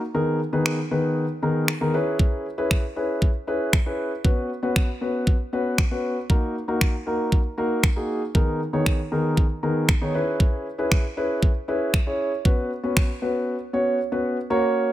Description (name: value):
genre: dance-pop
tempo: 117 BPM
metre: 4/4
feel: straight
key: unclear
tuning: A4 = 440 Hz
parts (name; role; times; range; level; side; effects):
- dark grand piano; accompaniment; 0.1-14.9 s; Eb3 to Db5; -23 LUFS; equal; sidechain pumping
- pop drum kit; drums; 0.7-13.1 s; finger snaps, kick drum; -20 LUFS; equal; none
room: little or no reverb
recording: none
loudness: -21 LUFS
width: side -14 dB against mid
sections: 0.0-14.5 A section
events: none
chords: 0.1 Abmadd9/Eb; 1.9 E6; 4.2 Bsus2; 6.3 Ebm; 8.3 Abmadd9/Eb; 10.1 E6; 12.5 Bsus2